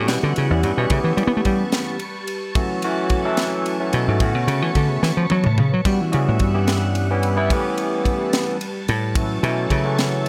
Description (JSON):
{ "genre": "electric jazz fusion", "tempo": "73 BPM (dotted quarters)", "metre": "6/8", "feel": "straight", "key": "E dorian", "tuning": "A4 = 437 Hz", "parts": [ { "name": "barky tine electric piano", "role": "accompaniment", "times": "0.0-10.3 s", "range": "D3 to A4", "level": "-25 LUFS", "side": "equal", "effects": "overdrive, analog chorus" }, { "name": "ensemble organ-string", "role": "sustained chords", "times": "0.0-10.3 s", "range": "G3 to C#6", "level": "-31 LUFS", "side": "equal", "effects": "ensemble chorus" }, { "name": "dry thumbed slap bass", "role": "bass", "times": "0.0-10.3 s", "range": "E2 to B3", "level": "-22 LUFS", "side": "equal", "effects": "none" }, { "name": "crisp fusion drum kit", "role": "drums", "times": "0.1-10.3 s", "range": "kick drum, ride cymbal, snare drum, splash cymbal, toms", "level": "-27 LUFS", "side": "equal", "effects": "none" } ], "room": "light reverb, studio ambience", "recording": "none", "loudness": "-20 LUFS", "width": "mono", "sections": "0.0-10.3 A section", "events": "slap bass solo 0.0-10.3; drum fill 5.0-5.9", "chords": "0.0 Em69; 0.9 A9; 2.6 F#m7; 4.2 Bm9; 5.9 Em69; 7.5 A9/E; 9.2 F#m7", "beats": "0.09 | 0.91 1.74 | 2.56 3.38 | 4.21 5.03 | 5.86 6.68 | 7.51 8.33 | 9.16 9.98" }